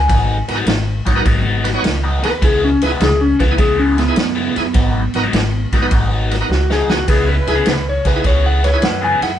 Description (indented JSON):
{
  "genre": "electric blues shuffle",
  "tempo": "103 BPM",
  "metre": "4/4",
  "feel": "swing 68% on 8ths",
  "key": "G# minor",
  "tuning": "A4 = 443 Hz",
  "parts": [
    { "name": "electric slide guitar", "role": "melody", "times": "0.0-9.4 s", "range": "B3 to G#5", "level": "-18 LUFS", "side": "left 2 dB", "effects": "none" },
    { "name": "upright bass", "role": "bass", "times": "0.0-9.4 s", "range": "G#1 to F#2", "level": "-19 LUFS", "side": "equal", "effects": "none" },
    { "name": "crunchy overdriven guitar", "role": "riff", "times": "0.1-9.3 s", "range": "G#2 to G#4", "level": "-22 LUFS", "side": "left 3 dB", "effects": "phaser" },
    { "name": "vintage drum kit", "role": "drums", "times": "0.1-9.3 s", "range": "kick drum, ride cymbal, snare drum, splash cymbal", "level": "-18 LUFS", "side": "right 1 dB", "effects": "none" },
    { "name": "bright tonewheel organ", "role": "accompaniment", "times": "0.5-9.3 s", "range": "B3 to C#5", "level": "-22 LUFS", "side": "right 3 dB", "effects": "slow rotary speaker, overdrive" },
    { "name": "edgy saxophone section", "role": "stabs", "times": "7.1-9.3 s", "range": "C#4 to B4", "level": "-25 LUFS", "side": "equal", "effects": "none" }
  ],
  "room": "moderate studio reverb, RT60 0.6 s",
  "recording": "band playing live in one room, nothing above 10.9 kHz",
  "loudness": "-13 LUFS",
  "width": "side -10 dB against mid",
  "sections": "0.0-9.4 A section",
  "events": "electric slide guitar solo 0.0-9.4; drum fill 6.5-7.1",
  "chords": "0.0 G#m7; 2.4 C#m7; 4.8 G#m7; 7.1 C#m7"
}